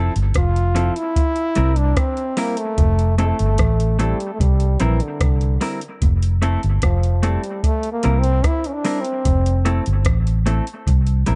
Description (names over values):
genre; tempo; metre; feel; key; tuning
roots reggae; 74 BPM; 4/4; straight; F major; A4 = 440 Hz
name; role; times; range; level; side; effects
semi-hollow electric guitar; accompaniment; 0.0-11.4 s; F3 to Bb4; -28 LUFS; equal; dub echo
vintage muted fingered electric bass; bass; 0.0-11.4 s; F1 to C2; -20 LUFS; equal; none
soft vintage rhythm box; drums; 0.2-11.4 s; hi-hat, kick drum, rim click; -23 LUFS; equal; none
clear trombone; melody; 0.4-9.8 s; D3 to F4; -26 LUFS; equal; dub echo
room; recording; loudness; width
digital ambience; echo-heavy mix, nothing above 10.3 kHz; -19 LUFS; mono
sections
0.0-11.4 A section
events
trombone solo 0.0-11.4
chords
0.0 Fmaj7; 1.2 C7; 2.8 Fmaj7; 4.4 C7; 6.0 Fmaj7; 7.6 C7; 9.3 Fmaj7